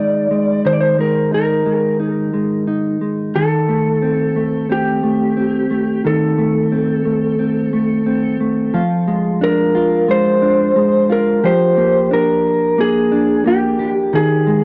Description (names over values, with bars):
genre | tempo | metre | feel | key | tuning
dream pop | 89 BPM | 4/4 | straight | unclear | A4 = 440 Hz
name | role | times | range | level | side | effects
electric slide guitar | melody | 0.0-14.6 s | G4 to D5 | -19 LUFS | equal | analog delay
mellow electric guitar | arpeggios | 0.0-14.6 s | Eb3 to G4 | -18 LUFS | equal | lush chorus, analog delay
room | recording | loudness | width
light reverb | dry, gritty hardware recording, transformer saturation, cassette tape | -16 LUFS | mono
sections
0.0-8.7 A section; 8.7-14.6 B section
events
none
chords
0.0 Bb7sus4; 3.3 Am7b5/Eb; 8.7 Bb7; 11.4 C9sus4; 14.1 Abmaj7(no3)